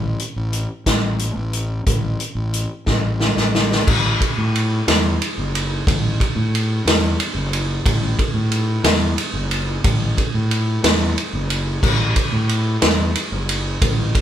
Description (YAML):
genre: psychedelic rock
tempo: 60 BPM (dotted quarters)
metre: 6/8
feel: straight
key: unclear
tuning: A4 = 440 Hz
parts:
  - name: fuzz fingered electric bass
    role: bass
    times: 0.0-14.1 s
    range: F#1 to A2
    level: -21 LUFS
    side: equal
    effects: overdrive
  - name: vintage drum kit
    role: drums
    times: 0.2-14.2 s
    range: crash cymbal, hi-hat, kick drum, ride cymbal, snare drum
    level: -18 LUFS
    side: equal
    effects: none
room: light reverb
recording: band playing live in one room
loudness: -17 LUFS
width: side -10 dB against mid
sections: 0.0-3.9 A section; 3.9-14.2 B section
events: drum fill 2.9-3.9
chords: none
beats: 0.87 | 1.87 2.87 | 3.86 4.86 | 5.86 6.86 | 7.85 8.85 | 9.84 10.84 | 11.83 12.82 | 13.82